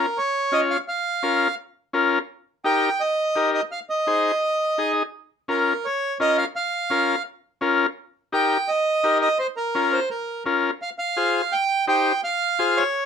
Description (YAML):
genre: latin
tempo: 169 BPM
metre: 4/4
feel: straight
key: Bb dorian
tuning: A4 = 440 Hz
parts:
  - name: accordion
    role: melody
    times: 0.0-13.1 s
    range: Bb4 to G5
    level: -22 LUFS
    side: right 2 dB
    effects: none
  - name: combo organ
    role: accompaniment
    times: 0.0-12.8 s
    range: Db4 to Eb5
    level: -21 LUFS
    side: left 4 dB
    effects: none
room: light reverb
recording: minimal, uncompressed stereo recording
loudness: -20 LUFS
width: side -7 dB against mid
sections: 0.0-10.8 A section; 10.8-13.1 B section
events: none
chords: 0.0 Bbm; 2.3 Eb; 3.7 Ab; 5.1 Bbm; 8.0 Eb; 9.4 Bbm; 10.8 Fm; 11.5 Cm; 12.2 Fm